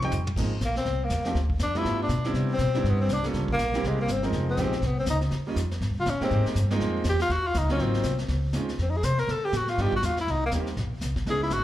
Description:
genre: jazz, small-group swing and bop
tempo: 242 BPM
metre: 4/4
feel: swing 60% on 8ths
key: Ab major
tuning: A4 = 444 Hz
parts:
  - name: clear concert grand piano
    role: accompaniment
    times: 0.0-11.6 s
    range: F3 to G5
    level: -30 LUFS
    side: right 2 dB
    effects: slapback echo
  - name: upright bass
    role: bass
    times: 0.0-11.6 s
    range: F1 to D3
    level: -27 LUFS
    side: equal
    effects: none
  - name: vintage brush drum kit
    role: drums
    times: 0.0-11.6 s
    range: brushed snare drum, crash cymbal, hi-hat, kick drum, snare drum, toms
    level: -34 LUFS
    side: left 1 dB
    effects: none
  - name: breathy tenor saxophone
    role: melody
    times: 0.6-11.6 s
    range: Ab3 to C5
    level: -28 LUFS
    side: left 2 dB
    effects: slapback echo
room: little or no reverb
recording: live gig heard through the venue's PA, club reverb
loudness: -24 LUFS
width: side -13 dB against mid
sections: 0.4-8.3 A section; 8.3-11.6 A section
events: drum fill 0.0-0.4; tenor saxophone solo 0.4-11.6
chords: 0.4 Ab69; 1.4 Dm; 1.9 G7; 2.3 Cmaj9; 3.3 Gm7b5; 3.8 C7; 4.3 Fm9; 5.3 Eb7; 6.3 Ab69; 7.3 Ebm7; 7.8 Ab13; 8.3 Dbmaj7; 9.3 D5; 9.8 G7b13; 10.3 Cm7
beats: 0.12 | 0.37 0.62 0.86 1.11 | 1.36 1.60 1.85 2.10 | 2.35 2.60 2.84 3.09 | 3.34 3.58 3.83 4.08 | 4.33 4.58 4.82 5.07 | 5.32 5.57 5.81 6.06 | 6.31 6.56 6.81 7.05 | 7.30 7.55 7.80 8.05 | 8.29 8.54 8.79 9.04 | 9.29 9.53 9.78 10.03 | 10.28 10.52 10.77 11.02 | 11.27 11.51

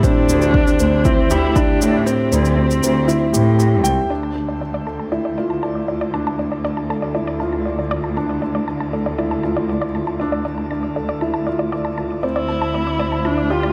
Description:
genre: piano and strings electronica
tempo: 118 BPM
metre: 4/4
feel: straight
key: D minor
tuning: A4 = 441 Hz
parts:
  - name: dark viola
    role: melody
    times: 0.0-3.6, 12.2-13.7 s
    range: C4 to F4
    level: -23 LUFS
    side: equal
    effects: shimmer reverb
  - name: dark upright piano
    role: riff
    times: 0.0-13.7 s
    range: C4 to G5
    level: -24 LUFS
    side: equal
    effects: digital delay, shimmer reverb
  - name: electronic kick drum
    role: drums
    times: 0.0-1.7 s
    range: none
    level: -20 LUFS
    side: equal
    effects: none
  - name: shaker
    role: drums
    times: 0.0-4.0 s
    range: none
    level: -30 LUFS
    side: equal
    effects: none
  - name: warm chamber cello section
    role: bass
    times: 0.3-13.7 s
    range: C2 to A2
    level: -24 LUFS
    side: equal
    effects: sidechain pumping
  - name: unison pluck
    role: arpeggios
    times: 4.1-13.7 s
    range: D5 to A5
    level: -29 LUFS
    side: equal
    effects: sidechain pumping, digital delay, shimmer reverb
room: moderate echo chamber reverb, RT60 1.5 s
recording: none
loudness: -19 LUFS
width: mono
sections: 0.0-4.1 A section; 4.1-13.7 B section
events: filter sweep on upright piano 0.0-4.1; kick drops out 2.1-4.1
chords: 0.0 C/D; 4.1 Dmadd9; 12.2 C/D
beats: | 0.03 0.54 1.05 1.56 | 2.07 2.58 3.08 3.59 | 4.10 4.61 5.12 5.63 | 6.13 6.64 7.15 7.66 | 8.17 8.68 9.19 9.70 | 10.20 10.71 11.22 11.73 | 12.24 12.75 13.25

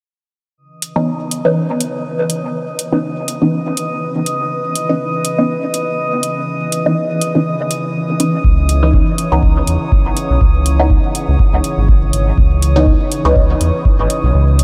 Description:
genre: dub techno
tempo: 122 BPM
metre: 4/4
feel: swing 56% on 16ths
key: C# minor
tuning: A4 = 440 Hz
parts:
  - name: warbly tape-like pad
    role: sustained chords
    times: 0.9-14.6 s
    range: C#3 to D#5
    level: -24 LUFS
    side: equal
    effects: chorus, built-in reverb, sidechain pumping
  - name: drifting glass-harmonics texture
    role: texture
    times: 1.1-14.6 s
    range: D#6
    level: -28 LUFS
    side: equal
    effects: chorus, built-in reverb, sidechain pumping
  - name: electronic hi-hat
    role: drums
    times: 0.8-14.6 s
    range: none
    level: -23 LUFS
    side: equal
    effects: none
  - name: filtered dub chord stab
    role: stabs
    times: 1.0-14.6 s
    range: E3 to D#4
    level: -21 LUFS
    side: equal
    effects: phaser, sidechain pumping, dub echo
  - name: round analog bass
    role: bass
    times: 8.4-14.6 s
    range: G#1 to E2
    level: -16 LUFS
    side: equal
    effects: sidechain pumping
  - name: electronic kick drum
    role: drums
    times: 8.4-14.0 s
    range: none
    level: -16 LUFS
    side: equal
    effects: none
room: moderate huge ambient reverb, RT60 8.7 s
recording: dreamy mix soaked in reverb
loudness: -15 LUFS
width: mono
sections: 0.6-14.6 A section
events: filter sweep on synth stab 0.6-14.6; kick drops out 14.3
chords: 0.6 C#m9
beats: | 0.58 1.07 1.56 2.05 | 2.54 3.04 3.53 4.02 | 4.51 5.00 5.49 5.99 | 6.48 6.97 7.46 7.95 | 8.45 8.94 9.43 9.92 | 10.41 10.90 11.40 11.89 | 12.38 12.87 13.36 13.86 | 14.35

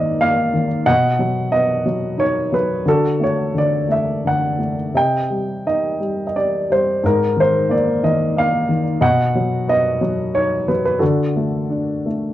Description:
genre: classical, lyrical solo piano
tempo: 89 BPM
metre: 3/4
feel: uneven beats, rubato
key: unclear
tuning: A4 = 442 Hz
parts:
  - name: dark baby grand piano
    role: solo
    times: 0.0-12.3 s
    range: Ab2 to G5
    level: -16 LUFS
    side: equal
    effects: none
room: light reverb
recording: worn, warbling old tape, cassette tape, warbly pitch drift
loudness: -16 LUFS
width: side -13 dB against mid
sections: 0.0-12.3 A section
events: none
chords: 0.0 Absus2; 0.9 B; 2.9 D; 4.9 Cm; 7.0 Absus2; 9.0 B; 11.0 D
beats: 0.19 | 0.85 1.50 2.17 | 2.86 3.55 4.24 | 4.94 5.64 6.34 | 7.03 7.70 8.36 | 9.02 9.68 10.35 | 11.01 11.69

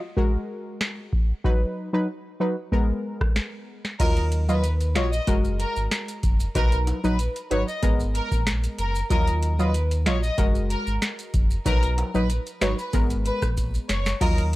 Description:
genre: dancehall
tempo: 94 BPM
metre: 4/4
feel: straight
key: unclear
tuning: A4 = 440 Hz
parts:
  - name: synth brass stab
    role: accompaniment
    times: 0.2-14.6 s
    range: F#3 to Eb5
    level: -28 LUFS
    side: equal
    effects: chorus, sidechain pumping
  - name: booming analog drum machine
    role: drums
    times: 0.2-14.6 s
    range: crash cymbal, hi-hat, kick drum, rim click, snare drum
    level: -23 LUFS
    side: equal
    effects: none
  - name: warm studio violin section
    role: melody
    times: 4.0-14.4 s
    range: Bb4 to Eb5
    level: -30 LUFS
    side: equal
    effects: tape echo
  - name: sub bass with octave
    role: bass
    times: 4.0-14.6 s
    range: Gb1 to Eb2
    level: -25 LUFS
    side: equal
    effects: none
  - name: maracas and timbales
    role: percussion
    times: 4.0-14.6 s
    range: none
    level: -41 LUFS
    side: right 3 dB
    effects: none
room: digital ambience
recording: dry, gritty hardware recording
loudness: -21 LUFS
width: side -18 dB against mid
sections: 0.0-4.0 A section; 4.0-14.2 B section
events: drum fill 13.6-14.2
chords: 0.2 Gbadd9; 1.4 B; 2.7 Abmadd9; 4.0 Ebmadd9; 5.3 Gbadd9; 6.6 B; 7.8 Abmadd9; 9.1 Ebmadd9; 10.4 Gbadd9; 11.7 B; 12.9 Abmadd9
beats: 0.17 0.81 | 1.45 2.08 2.72 3.36 | 4.00 4.64 5.28 5.91 | 6.55 7.19 7.83 8.47 | 9.11 9.74 10.38 11.02 | 11.66 12.30 12.94 13.57 | 14.21

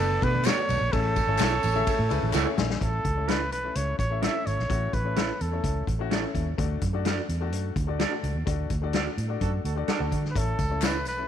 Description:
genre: uptempo 1960s-style soul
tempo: 127 BPM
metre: 4/4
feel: straight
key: A major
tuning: A4 = 444 Hz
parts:
  - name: warm trumpet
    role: melody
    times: 0.0-5.9, 10.3-11.3 s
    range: A4 to E5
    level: -29 LUFS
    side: right 2 dB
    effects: none
  - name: warm horn section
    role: second line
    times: 0.0-2.5, 9.4-10.2 s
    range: C#4 to D5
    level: -35 LUFS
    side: right 12 dB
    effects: none
  - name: warm baby grand piano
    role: accompaniment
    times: 0.0-11.3 s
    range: A3 to G#5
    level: -34 LUFS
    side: left 11 dB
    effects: none
  - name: percussive tonewheel organ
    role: sustained chords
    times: 0.0-2.8 s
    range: A3 to A4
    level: -39 LUFS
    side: equal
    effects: none
  - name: vintage muted fingered electric bass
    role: bass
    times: 0.0-11.2 s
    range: F#1 to D3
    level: -28 LUFS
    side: right 1 dB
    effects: none
  - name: congas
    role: percussion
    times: 0.0-2.7 s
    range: none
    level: -38 LUFS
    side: right 8 dB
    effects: none
  - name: vintage drum kit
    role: drums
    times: 0.2-11.2 s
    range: hi-hat, kick drum, ride cymbal, snare drum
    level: -30 LUFS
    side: left 3 dB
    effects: none
  - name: handclaps and tambourine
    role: percussion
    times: 0.4-2.7, 10.6-11.2 s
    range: none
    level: -37 LUFS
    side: left 3 dB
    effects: none
  - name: electric guitar through a small old amp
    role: stabs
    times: 0.5-10.9 s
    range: A3 to D5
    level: -32 LUFS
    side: right 12 dB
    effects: harmonic tremolo
room: light reverb, small room ambience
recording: 1960s-style stereo with parts hard left and right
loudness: -24 LUFS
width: side -9 dB against mid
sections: 0.0-2.8 A section; 2.8-11.3 B section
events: grand piano fill 2.1-2.8; drum fill 2.3-2.8; band accent 8.5-10.4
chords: 0.0 Bm7; 0.9 Amaj7; 2.8 A; 6.6 D; 10.4 A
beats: 0.46 | 0.93 1.40 1.87 2.34 | 2.81 3.28 3.75 4.22 | 4.70 5.17 5.64 6.11 | 6.58 7.05 7.53 8.00 | 8.47 8.94 9.41 9.88 | 10.35 10.82

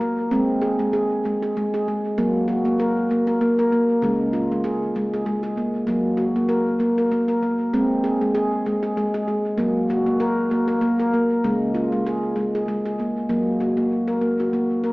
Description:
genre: world meditative, meditative tuned percussion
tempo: 97 BPM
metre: 3/4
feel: swing 56% on 16ths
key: Gb lydian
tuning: A4 = 443 Hz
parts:
  - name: handpan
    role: solo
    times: 0.0-14.9 s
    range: Db3 to Bb4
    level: -19 LUFS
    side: equal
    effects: diffuse ambient delay
room: wet scoring stage reverb, RT60 1.7 s, studio ambience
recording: small speaker sound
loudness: -19 LUFS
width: side -22 dB against mid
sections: 0.0-13.3 A section; 13.3-14.9 B section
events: none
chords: 0.3 Ab; 2.2 Gb; 4.0 Db5; 5.9 Gb; 7.7 Ab; 9.6 Gb; 11.4 Db5; 13.3 Gb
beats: | 0.33 0.94 1.56 | 2.17 2.79 3.41 | 4.03 4.64 5.26 | 5.88 6.50 7.12 | 7.73 8.35 8.97 | 9.59 10.21 10.82 | 11.44 12.06 12.68 | 13.30 13.92 14.54

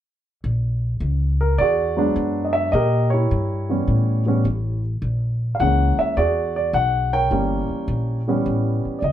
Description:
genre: jazz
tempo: 105 BPM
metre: 4/4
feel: swing 67% on 8ths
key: unclear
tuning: A4 = 440 Hz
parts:
  - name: upright bass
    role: bass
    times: 0.4-9.1 s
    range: G1 to Bb2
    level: -21 LUFS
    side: equal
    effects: none
  - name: warm grand piano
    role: melody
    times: 1.4-9.1 s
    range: E3 to G5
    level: -20 LUFS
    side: right 1 dB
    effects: none
room: moderate studio reverb, RT60 0.7 s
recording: band playing live in one room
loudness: -18 LUFS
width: side -11 dB against mid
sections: 0.4-9.1 A section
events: none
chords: 0.4 A#m; 1.6 E9; 2.7 Gdim7; 3.9 A7; 5.0 A#m7b5; 6.2 Eadd9; 7.3 Gdim7; 8.5 A7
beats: | 0.45 1.02 1.59 2.17 | 2.74 3.31 3.88 4.45 | 5.03 5.60 6.17 6.74 | 7.31 7.88 8.46 9.03

